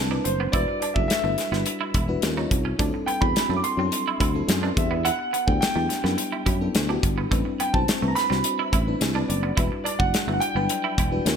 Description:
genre	polished 1980s jazz-funk pop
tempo	106 BPM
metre	4/4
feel	straight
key	E minor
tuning	A4 = 440 Hz
part	clear concert grand piano	melody	0.0-11.4 s	C5 to D6	-27 LUFS	right 2 dB	wide subtle chorus
part	FM electric piano with soft pad layer	accompaniment	0.0-11.4 s	F#3 to D5	-29 LUFS	left 2 dB	tremolo, wide subtle chorus
part	sustaining fretless electric bass	bass	0.0-11.4 s	E1 to F#2	-26 LUFS	equal	analog chorus
part	semi-hollow electric guitar	riff	0.1-11.1 s	A3 to E4	-32 LUFS	right 8 dB	ensemble chorus
part	modern studio drum kit	drums	0.3-11.4 s	hi-hat, kick drum, snare drum	-25 LUFS	equal	none
room	light reverb, small room ambience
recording	bright 1980s-style digital production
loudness	-21 LUFS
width	side -7 dB against mid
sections	0.0-11.4 A section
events	none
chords	0.0 Am11; 0.5 Em9; 2.2 D#9; 2.8 D9sus4; 4.8 Em9; 7.3 Am11; 9.6 Em9

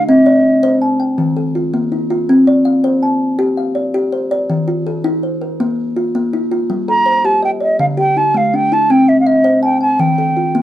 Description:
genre	southern african traditional, mbira-style interlocking cycle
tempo	109 BPM (dotted quarters)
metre	12/8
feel	straight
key	C equiheptatonic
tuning	A4 = 440 Hz
part	mellow hollow silver concert flute	melody	0.0-0.8, 6.9-10.6 s	Eb5+40c to Bb5+30c	-13 LUFS	right 1 dB	none
part	kalimba	arpeggios	0.0-10.6 s	D3-29c to A5-43c	-13 LUFS	left 1 dB	none
room	moderate studio reverb, RT60 0.6 s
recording	worn, warbling old tape, cassette tape, warbly pitch drift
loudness	-12 LUFS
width	side -13 dB against mid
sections	0.0-10.6 A section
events	none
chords	0.1 Cm; 1.2 Eb; 2.3 C5; 4.5 Eb5; 6.7 Gm; 7.8 D5; 8.9 Cm; 10.0 Eb

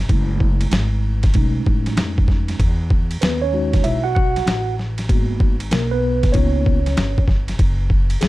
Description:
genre	hip hop, jazz-hop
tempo	96 BPM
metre	4/4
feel	swing 64% on 16ths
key	unclear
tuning	A4 = 440 Hz
part	upright bass	bass	0.0-8.3 s	F#1 to E#2	-21 LUFS	equal	none
part	boom bap sampler-style drum kit	drums	0.0-8.3 s	hi-hat, kick drum, ride cymbal, snare drum	-18 LUFS	equal	overdrive
part	mellow tine electric piano	accompaniment	0.1-8.3 s	G#3 to F#5	-23 LUFS	right 1 dB	medium stereo tremolo, plate reverb
room	little or no reverb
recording	dark, warm production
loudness	-16 LUFS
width	side -18 dB against mid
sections	0.0-8.3 A section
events	tine electric piano solo 0.0-8.3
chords	0.1 F#m9; 1.3 B13; 2.6 Emaj9; 5.1 G#m9; 6.3 C#13; 7.6 F#sus2

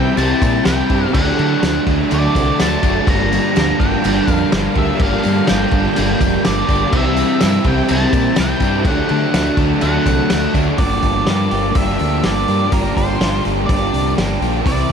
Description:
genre	rock, shoegaze and dream pop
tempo	124 BPM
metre	4/4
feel	straight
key	G dorian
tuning	A4 = 440 Hz
part	octave-fuzz lead guitar	melody	0.0-14.9 s	Bb4 to Bb5	-23 LUFS	right 1 dB	distortion, tape echo
part	icy glass pad	sustained chords	0.0-14.9 s	D4 to G5	-27 LUFS	equal	chorus, built-in reverb
part	direct-recorded clean electric guitar	arpeggios	0.0-14.9 s	E3 to G4	-28 LUFS	left 10 dB	none
part	crunchy overdriven guitar	riff	0.0-10.8 s	G2 to D4	-24 LUFS	left 1 dB	none
part	overdriven electric guitar	riff	0.0-14.9 s	G2 to E4	-22 LUFS	left 12 dB	analog chorus
part	overdriven electric guitar	riff	0.0-14.9 s	G2 to G4	-21 LUFS	right 12 dB	reverse reverb
part	growling fingered electric bass	bass	0.0-14.9 s	F1 to D3	-20 LUFS	equal	overdrive
part	loose indie drum kit	drums	0.2-14.9 s	crash cymbal, hi-hat, kick drum, snare drum	-19 LUFS	equal	none
part	tambourine	percussion	0.2-10.7 s	none	-37 LUFS	right 16 dB	none
room	light reverb, small room ambience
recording	none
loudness	-13 LUFS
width	side -7 dB against mid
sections	0.0-10.8 A section; 10.8-14.9 B section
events	none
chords	0.0 C; 1.1 D; 3.1 Gm7; 6.9 C; 8.9 D; 10.8 Gm7

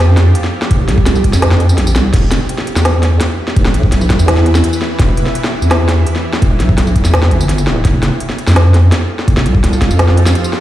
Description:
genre	half-time drum and bass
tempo	168 BPM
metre	4/4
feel	half-time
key	E phrygian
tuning	A4 = 441 Hz
part	bowed-like drone	sustained chords	0.0-10.6 s	E3 to B4	-21 LUFS	right 2 dB	built-in reverb, phaser, sidechain pumping
part	deep soft wobble bass	bass	0.0-10.3 s	D1 to F2	-11 LUFS	equal	chorus
part	organic electronic drum kit	drums	0.2-10.6 s	crash cymbal, hi-hat, snare drum, tambourine	-16 LUFS	equal	none
part	electronic kick drum	drums	0.7-9.9 s	none	-12 LUFS	equal	none
room	light reverb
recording	played on a big sound system in a bare room, large studio reverb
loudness	-10 LUFS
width	side -14 dB against mid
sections	0.0-10.6 A section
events	none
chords	0.0 Fadd9; 2.1 Em; 7.9 Fadd9

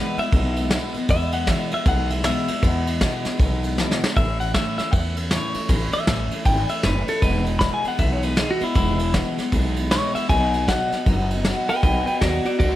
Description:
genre	rockabilly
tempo	156 BPM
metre	4/4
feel	swing 62% on 8ths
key	E major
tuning	A4 = 444 Hz
part	clean electric guitar	melody	0.0-12.8 s	E4 to B5	-25 LUFS	left 1 dB	tape echo
part	picked steel-string acoustic guitar	accompaniment	0.0-12.8 s	E2 to F#4	-26 LUFS	left 2 dB	none
part	upright bass	bass	0.2-12.8 s	E1 to E2	-24 LUFS	equal	none
part	vintage brush drum kit	drums	0.2-12.7 s	kick drum, ride cymbal, snare drum	-23 LUFS	equal	none
room	light reverb, studio reverb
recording	none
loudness	-19 LUFS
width	side -14 dB against mid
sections	0.0-12.8 A section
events	clean electric guitar solo 0.0-12.8; drum fill 3.8-4.2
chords	0.0 E; 4.2 A; 7.2 E; 10.3 B

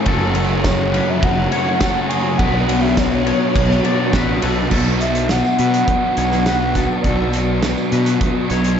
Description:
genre	rock, shoegaze and dream pop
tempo	103 BPM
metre	4/4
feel	straight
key	unclear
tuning	A4 = 440 Hz
part	twangy electric guitar	arpeggios	0.0-8.8 s	G#4 to D5	-28 LUFS	left 4 dB	lush chorus, tape echo
part	crunchy overdriven guitar	riff	0.0-8.8 s	F#2 to F#4	-22 LUFS	right 6 dB	reverse reverb
part	crunchy overdriven guitar	riff	0.0-4.7 s	B2 to F#4	-24 LUFS	right 1 dB	none
part	thick fuzz guitar	riff	0.0-8.8 s	F#2 to B3	-21 LUFS	left 6 dB	distortion, analog chorus
part	fuzz fingered electric bass	bass	0.1-8.8 s	F#1 to B2	-21 LUFS	equal	overdrive
part	loose indie drum kit	drums	0.1-8.8 s	crash cymbal, hi-hat, kick drum, ride cymbal, snare drum	-22 LUFS	equal	none
part	pure breathy sine lead	melody	0.7-7.6 s	C#5 to G#5	-23 LUFS	right 1 dB	chorus, tape echo
part	tambourine	percussion	0.7-8.7 s	none	-38 LUFS	right 8 dB	none
room	wet lush hall reverb, RT60 1.6 s, small room ambience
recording	dreamy mix soaked in reverb, nothing above 7.8 kHz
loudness	-14 LUFS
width	side -8 dB against mid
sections	0.0-4.7 A section; 4.7-8.8 B section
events	none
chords	0.1 F#m; 2.4 Bmadd9; 4.7 Bm

